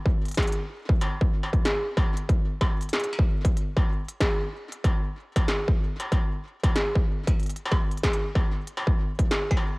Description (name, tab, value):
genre	IDM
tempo	94 BPM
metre	4/4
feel	swing 62% on 16ths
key	none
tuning	none
part	electronic kick drum	drums	0.1-9.6 s	none	-23 LUFS	equal	distortion, overdrive
part	industrial drum kit	drums	0.3-9.7 s	hi-hat, snare drum, struck metal	-29 LUFS	equal	overdrive
room	little or no reverb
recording	worn, warbling old tape, cassette tape, warbly pitch drift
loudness	-23 LUFS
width	side -28 dB against mid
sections	0.0-9.8 A section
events	none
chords	none